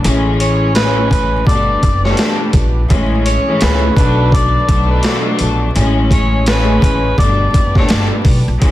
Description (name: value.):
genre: hip hop, boom-bap hip-hop.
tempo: 84 BPM.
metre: 4/4.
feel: swing 61% on 16ths.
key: A major.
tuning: A4 = 439 Hz.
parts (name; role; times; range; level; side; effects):
warm studio string section; accompaniment; 0.0-8.7 s; A2 to D4; -18 LUFS; left 2 dB; cassette tape, high-pass filter, low-pass filter.
warm studio string section; sustained chords; 0.0-8.7 s; E3 to D5; -27 LUFS; right 1 dB; high-pass filter, low-pass filter.
upright bass; bass; 0.0-8.7 s; F#1 to C#2; -16 LUFS; equal; none.
boom bap sampler-style drum kit; drums; 0.0-8.7 s; hi-hat, kick drum, snare drum; -15 LUFS; equal; none.
breathy tenor saxophone; melody; 0.4-7.9 s; B4 to D5; -19 LUFS; equal; high-pass filter, low-pass filter, ping-pong delay.
room: small room ambience.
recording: dense, heavily limited modern master, vinyl crackle.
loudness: -11 LUFS.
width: side -14 dB against mid.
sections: 0.0-8.7 A section.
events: none.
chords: 0.0 Amaj7; 1.5 Gadd9; 2.9 Amaj7; 4.0 Bm7; 5.8 Amaj7; 7.2 Gadd9.